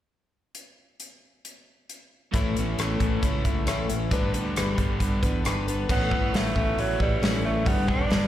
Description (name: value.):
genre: folk rock and heartland rock.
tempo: 135 BPM.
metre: 4/4.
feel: straight.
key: A mixolydian.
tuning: A4 = 445 Hz.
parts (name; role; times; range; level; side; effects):
natural country drum kit; drums; 0.5-8.2 s; crash cymbal, hi-hat, kick drum, rim click, snare drum; -27 LUFS; equal; none.
picked plugged-in twelve-string acoustic guitar; accompaniment; 2.3-8.3 s; G2 to B4; -30 LUFS; left 4 dB; slapback echo.
crunchy overdriven guitar; riff; 2.3-8.3 s; G2 to G4; -32 LUFS; right 1 dB; slapback echo.
fingered electric bass; bass; 2.3-8.3 s; E1 to G2; -29 LUFS; equal; none.
breathy tenor saxophone; melody; 5.9-8.3 s; F#3 to D4; -28 LUFS; right 2 dB; slapback echo.
room: small room ambience.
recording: live gig heard through the venue's PA, recital hall reverb.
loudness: -22 LUFS.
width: side -12 dB against mid.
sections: 0.5-2.3 A section; 2.3-5.9 B section; 5.9-8.3 C section.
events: none.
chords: 0.5 N.C.; 2.3 Aadd9; 4.1 G; 5.9 Aadd9; 7.7 G.